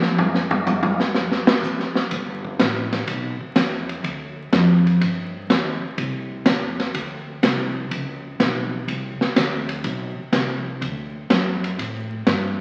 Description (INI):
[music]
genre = jazz, big band swing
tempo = 124 BPM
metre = 4/4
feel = swing 69% on 8ths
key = G major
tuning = A4 = 441 Hz
[part]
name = swinging big-band drum kit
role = drums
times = 0.0-12.4 s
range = hi-hat, kick drum, ride cymbal, snare drum, toms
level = -23 LUFS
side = equal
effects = none
[part]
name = upright bass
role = bass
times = 2.1-12.6 s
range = G1 to A2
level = -27 LUFS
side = equal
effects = none
[sound]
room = moderate large studio reverb, RT60 1.2 s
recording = very old 78 rpm record, vinyl crackle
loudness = -22 LUFS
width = mono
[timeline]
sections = 0.0-2.1 A section; 2.1-12.6 B section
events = drum solo 0.0-2.1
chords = none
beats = | 0.19 0.67 1.15 1.64 | 2.12 2.60 3.08 3.56 | 4.05 4.53 5.01 5.50 | 5.98 6.46 6.95 7.43 | 7.91 8.40 8.88 9.36 | 9.85 10.33 10.81 11.30 | 11.78 12.27